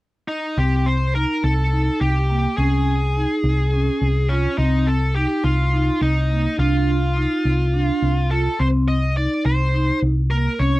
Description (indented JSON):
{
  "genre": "progressive instrumental, band music in an uneven meter",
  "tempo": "210 BPM (eighths)",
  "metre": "7/8",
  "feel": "straight",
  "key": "unclear",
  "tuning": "A4 = 440 Hz",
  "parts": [
    { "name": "high-gain lead guitar", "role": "melody", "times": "0.3-10.8 s", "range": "Db4 to Eb5", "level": "-24 LUFS", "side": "left 1 dB", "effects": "distortion" },
    { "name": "vibraphone with medium hard mallets", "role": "arpeggios", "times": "0.6-10.8 s", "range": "Bb3 to F4", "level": "-24 LUFS", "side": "right 1 dB", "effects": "slapback echo" },
    { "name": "hollow-body short-scale picked electric bass", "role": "bass", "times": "0.6-10.8 s", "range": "C2", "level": "-19 LUFS", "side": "equal", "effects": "none" }
  ],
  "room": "little or no reverb",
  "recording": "dry, close 1970s-style studio recording",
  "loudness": "-17 LUFS",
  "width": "side -18 dB against mid",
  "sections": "0.6-10.8 A section",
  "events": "none",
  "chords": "0.0 N.C.; 0.6 Cm; 2.6 Dbmaj7(no3)/C; 4.6 Cm; 6.6 Cmadd11; 8.6 Cm",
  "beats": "0.00 0.29 | 0.58 0.86 1.15 1.44 1.72 2.01 2.29 | 2.58 2.87 3.15 3.44 3.73 4.01 4.30 | 4.58 4.87 5.16 5.44 5.73 6.02 6.30 | 6.59 6.88 7.16 7.45 7.74 8.02 8.31 | 8.60 8.88 9.17 9.45 9.74 10.03 10.31 | 10.60"
}